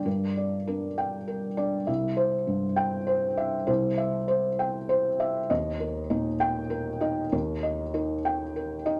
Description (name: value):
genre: neoclassical minimalist piano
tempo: 66 BPM (dotted quarters)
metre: 6/8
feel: rubato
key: unclear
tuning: A4 = 440 Hz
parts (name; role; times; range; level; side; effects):
- felt-muted upright piano; solo; 0.0-9.0 s; C2 to G5; -28 LUFS; equal; none
room: moderate studio reverb, RT60 0.8 s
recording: none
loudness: -28 LUFS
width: mono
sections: 0.0-9.0 A section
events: none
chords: 0.0 Gm; 1.9 C; 5.5 Eb